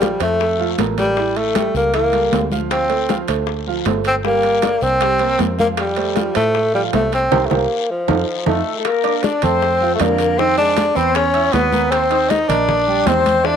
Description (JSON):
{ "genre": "Afro-Cuban jazz", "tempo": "156 BPM", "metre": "4/4", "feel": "straight", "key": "F major, Bb major from 8.9 s", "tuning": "A4 = 441 Hz", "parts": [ { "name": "breathy tenor saxophone", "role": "melody", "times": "0.0-13.6 s", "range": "F3 to Eb4", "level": "-17 LUFS", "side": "left 1 dB", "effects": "none" }, { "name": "warm upright piano", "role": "accompaniment", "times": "0.0-13.6 s", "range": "D3 to E6", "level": "-23 LUFS", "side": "right 11 dB", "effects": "none" }, { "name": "fingered electric bass", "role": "bass", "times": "0.0-13.6 s", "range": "G1 to A2", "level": "-24 LUFS", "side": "left 1 dB", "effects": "none" }, { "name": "bongos", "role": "percussion", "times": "0.0-13.6 s", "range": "none", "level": "-27 LUFS", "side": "left 16 dB", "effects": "none" }, { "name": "congas", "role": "percussion", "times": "0.0-13.6 s", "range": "none", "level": "-25 LUFS", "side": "left 2 dB", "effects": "none" }, { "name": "guiro", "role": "percussion", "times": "0.0-13.6 s", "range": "none", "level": "-33 LUFS", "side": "left 17 dB", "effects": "none" }, { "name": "timbales", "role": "percussion", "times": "0.0-13.4 s", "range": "none", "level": "-26 LUFS", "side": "right 12 dB", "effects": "none" }, { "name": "breathy bright jazz flute", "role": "second line", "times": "8.5-13.6 s", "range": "A4 to Eb5", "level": "-22 LUFS", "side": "left 14 dB", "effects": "none" } ], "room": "moderate spring reverb, RT60 2.0 s, studio reverb", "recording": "1960s-style stereo with parts hard left and right", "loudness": "-14 LUFS", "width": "side -8 dB against mid", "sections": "0.0-8.9 A section; 8.9-13.6 B section", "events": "drum fill 7.3-8.9; band accent 7.3-8.9", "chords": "0.0 Bbsus2; 1.2 A7b9; 2.7 Dm7; 4.2 Gm; 5.0 C5; 5.8 Fadd9; 7.3 C5; 8.1 F7; 8.9 Bbmaj7; 10.4 Fm7; 11.2 E5; 11.9 Eb6", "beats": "0.02 0.41 0.79 | 1.17 1.56 1.94 2.33 | 2.71 3.10 3.48 3.86 | 4.25 4.63 5.01 5.40 | 5.78 6.17 6.55 6.93 | 7.32 7.70 8.09 8.47 | 8.85 9.24 9.62 10.00 | 10.39 10.77 11.15 11.54 | 11.92 12.30 12.68 13.07 | 13.45" }